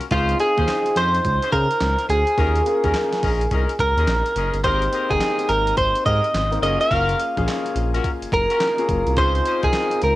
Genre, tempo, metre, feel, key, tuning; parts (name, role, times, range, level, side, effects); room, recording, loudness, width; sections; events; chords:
R&B, new jack swing; 106 BPM; 4/4; swing 63% on 16ths; Ab major; A4 = 440 Hz
warm concert grand piano; accompaniment; 0.0-10.2 s; Bb3 to G5; -28 LUFS; left 6 dB; cassette tape
warm horn section; stabs; 0.0-9.7 s; C4 to C5; -29 LUFS; left 6 dB; cassette tape
dusty soul sampler-style drum kit; drums; 0.0-10.2 s; handclaps, hi-hat, kick drum, snare drum; -28 LUFS; equal; cassette tape
direct-recorded clean electric guitar; melody; 0.1-10.2 s; F4 to F5; -20 LUFS; right 1 dB; cassette tape
smooth synth bass; bass; 0.1-10.2 s; Gb1 to Db3; -23 LUFS; equal
moderate studio reverb, RT60 0.6 s; home recording on cassette; -17 LUFS; side -16 dB against mid
0.0-4.6 A section; 4.6-10.2 B section
0.1 Dbmaj7; 2.4 Eb7sus4; 4.6 Abmaj9; 6.6 Gbmaj7; 9.2 Dbmaj7